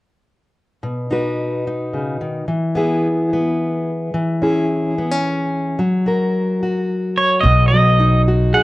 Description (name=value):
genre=acoustic folk duo or small band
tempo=109 BPM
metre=3/4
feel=straight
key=B major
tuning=A4 = 440 Hz
part: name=fingerpicked plugged-in steel-string acoustic guitar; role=accompaniment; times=0.8-8.6 s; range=B2 to B4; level=-18 LUFS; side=left 1 dB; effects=none
part: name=pedal steel guitar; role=melody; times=7.2-8.6 s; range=C#5 to F#5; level=-15 LUFS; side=right 1 dB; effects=none
part: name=upright bass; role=bass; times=7.4-8.5 s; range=B1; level=-14 LUFS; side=right 1 dB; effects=none
room=light reverb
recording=worn, warbling old tape, cassette tape, warbly pitch drift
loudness=-16 LUFS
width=side -18 dB against mid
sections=0.8-7.4 A section; 7.4-8.6 B section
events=none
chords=0.8 B; 2.5 E; 4.1 C#m/E; 5.8 F#; 7.4 B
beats=| 0.81 1.37 1.92 | 2.47 3.03 3.58 | 4.13 4.68 5.24 | 5.79 6.34 6.89 | 7.45 8.00 8.55